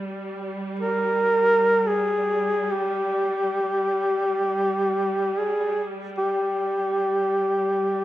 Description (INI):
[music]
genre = caucasian folk, Caucasian lament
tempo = free time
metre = none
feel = none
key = G phrygian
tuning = A4 = 440 Hz
[part]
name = dark studio string section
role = drone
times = 0.0-8.0 s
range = G3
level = -31 LUFS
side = right 1 dB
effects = none
[part]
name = mellow duduk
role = melody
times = 0.8-8.0 s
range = G4 to Bb4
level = -21 LUFS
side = equal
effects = none
[sound]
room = light reverb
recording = minimal, uncompressed stereo recording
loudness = -21 LUFS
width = side -14 dB against mid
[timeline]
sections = 0.0-8.0 A section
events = slowing down 3.6-8.0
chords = none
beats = free time